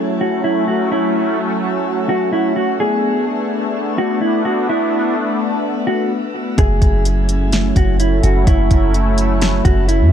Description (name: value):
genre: hip hop, atmospheric cloud-rap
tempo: 127 BPM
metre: 4/4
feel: half-time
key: F# minor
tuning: A4 = 440 Hz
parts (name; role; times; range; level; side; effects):
- sweeping resonant pad; sustained chords; 0.0-10.1 s; F#3 to F#4; -19 LUFS; left 1 dB; chorus, sidechain pumping
- mellow tine electric piano; texture; 0.0-10.1 s; A3 to F#5; -29 LUFS; right 2 dB; wide subtle chorus
- mellow electric guitar; melody; 0.2-10.1 s; E4 to G#4; -20 LUFS; right 1 dB; low-pass filter, tape echo
- soft 808-style bass; bass; 6.6-10.1 s; F#1 to F#2; -15 LUFS; equal; none
- smooth R&B drum kit; drums; 6.6-10.0 s; hi-hat, kick drum, snare drum; -16 LUFS; equal; none
room: little or no reverb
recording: dark, warm production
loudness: -14 LUFS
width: side -9 dB against mid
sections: 0.0-10.1 A section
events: none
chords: 0.0 F#m7; 2.8 Bm7; 6.6 F#m7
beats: 0.44 | 0.91 1.38 1.86 2.33 | 2.80 3.27 3.75 4.22 | 4.69 5.16 5.63 6.11 | 6.58 7.05 7.53 8.00 | 8.47 8.94 9.41 9.89